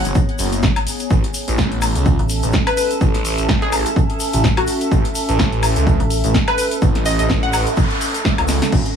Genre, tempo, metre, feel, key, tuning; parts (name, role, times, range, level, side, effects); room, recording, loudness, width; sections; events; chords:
bass house; 126 BPM; 4/4; swing 56% on 16ths; A4 = 441 Hz
phased detuned saw bass; bass; 0.0-8.8 s; F#1 to C#2; -19 LUFS; equal; phaser, overdrive, sidechain pumping
tube shaker; percussion; 0.0-8.8 s; -30 LUFS; left 3 dB
warbly tape-like pad; texture; 0.0-9.0 s; B3 to A5; -24 LUFS; right 2 dB; chorus, built-in reverb, sidechain pumping
house drum kit; drums; 0.1-8.9 s; crash cymbal, hi-hat, snare drum, woodblock; -23 LUFS; left 1 dB
electronic kick drum; drums; 0.2-8.8 s; -18 LUFS; equal
metallic FM bass; bass; 0.6-6.2 s; G#1 to A1; -20 LUFS; equal; tube saturation, sidechain pumping
glassy wavetable pluck; melody; 2.7-7.6 s; F#4 to F#5; -24 LUFS; equal; chorus, dub echo
noise sweep; sound effects; 7.3-8.7 s; -26 LUFS; right 2 dB
light reverb; -15 LUFS; side -7 dB against mid
0.0-9.0 A section
noise sweep 7.3-8.7; drum fill 8.5
0.0 G#m; 1.1 A